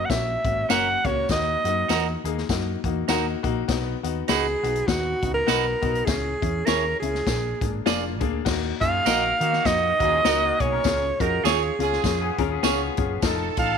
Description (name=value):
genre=uptempo 1960s-style soul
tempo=100 BPM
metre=4/4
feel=swing 59% on 8ths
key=unclear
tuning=A4 = 442 Hz
part: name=breathy alto saxophone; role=melody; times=0.0-13.8 s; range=F#4 to F#5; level=-24 LUFS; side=right 2 dB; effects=none
part: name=warm upright piano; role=accompaniment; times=0.0-13.8 s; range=A#3 to A4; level=-29 LUFS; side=left 13 dB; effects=none
part: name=hollow-body short-scale fingered electric bass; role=bass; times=0.0-13.8 s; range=E#1 to D#3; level=-30 LUFS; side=right 1 dB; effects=none
part: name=swinging big-band drum kit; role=drums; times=0.1-13.7 s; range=crash cymbal, hi-hat, kick drum, snare drum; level=-28 LUFS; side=left 3 dB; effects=none
part: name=tambourine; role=percussion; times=0.1-13.4 s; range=none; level=-35 LUFS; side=right 17 dB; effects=none
part: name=semi-hollow electric guitar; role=stabs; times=0.7-12.8 s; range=C#4 to D#5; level=-28 LUFS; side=right 14 dB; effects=none
part: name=clear horn section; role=second line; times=8.8-12.4 s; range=A#3 to C#5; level=-29 LUFS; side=right 14 dB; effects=none
part: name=electric guitar through a small old amp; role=riff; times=10.0-13.2 s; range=E#3 to A#4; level=-32 LUFS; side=left 11 dB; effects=none
part: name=warm studio string section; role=second line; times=13.2-13.8 s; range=A4 to A5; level=-28 LUFS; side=right 14 dB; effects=none
room=light reverb, studio ambience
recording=1960s-style stereo with parts hard left and right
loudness=-21 LUFS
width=side -6 dB against mid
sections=0.0-8.5 A section; 8.5-13.8 B section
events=none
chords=0.0 F#; 1.3 D#m; 3.7 B; 6.1 C#m; 7.3 A#7; 8.5 D#m; 10.8 C#; 13.2 F7